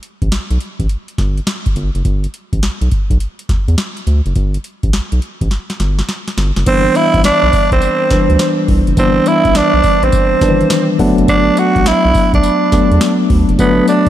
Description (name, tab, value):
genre	R&B, new jack swing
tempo	104 BPM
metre	4/4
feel	swing 65% on 16ths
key	G major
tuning	A4 = 440 Hz
part	booming analog drum machine	drums	0.0-14.1 s	crash cymbal, hi-hat, kick drum, snare drum, tambourine	-17 LUFS	equal	none
part	round analog bass	bass	0.2-14.1 s	F#1 to E2	-16 LUFS	equal	none
part	growling tenor saxophone	melody	6.7-14.1 s	B3 to F#4	-13 LUFS	right 3 dB	ping-pong delay
part	tine electric piano	accompaniment	6.7-14.1 s	Eb3 to B4	-14 LUFS	left 2 dB	medium stereo tremolo
room	light reverb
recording	dark, warm production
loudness	-11 LUFS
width	side -12 dB against mid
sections	0.0-6.7 A section; 6.7-14.1 B section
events	drum fill 5.5-6.7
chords	0.0 N.C.; 1.8 G; 6.7 Cmaj7/G; 11.0 Gmaj9